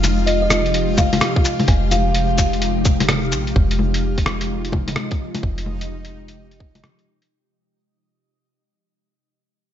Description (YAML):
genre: future garage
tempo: 128 BPM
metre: 4/4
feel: swing 65% on 16ths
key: F minor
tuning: A4 = 440 Hz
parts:
  - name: ethereal airy pad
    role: sustained chords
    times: 0.0-7.3 s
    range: C3 to G4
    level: -24 LUFS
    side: left 1 dB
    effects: ensemble chorus, built-in reverb, sidechain pumping
  - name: soft 808-style bass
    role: bass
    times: 0.0-6.8 s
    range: F1 to Bb1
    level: -22 LUFS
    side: equal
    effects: sidechain pumping
  - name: lo-fi sampler-style drum kit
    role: drums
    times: 0.0-7.3 s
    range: bongos, cabasa, hi-hat, rim click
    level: -21 LUFS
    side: left 2 dB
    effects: studio reverb
  - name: backwards swelling texture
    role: texture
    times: 0.0-7.3 s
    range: Eb4 to F5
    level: -30 LUFS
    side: left 2 dB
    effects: built-in reverb
  - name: kalimba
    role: melody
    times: 0.3-2.3 s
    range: Eb5 to Ab5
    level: -24 LUFS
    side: equal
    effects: dub echo
  - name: electronic kick drum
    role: drums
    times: 1.0-6.7 s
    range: none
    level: -18 LUFS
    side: equal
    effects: overdrive, studio reverb
room: light reverb, digital ambience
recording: nothing above 7.8 kHz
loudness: -16 LUFS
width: side -10 dB against mid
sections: 0.0-3.6 A section; 3.6-7.3 B section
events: fade-out 3.6-7.3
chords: 0.0 Ab6/F; 3.6 Fm7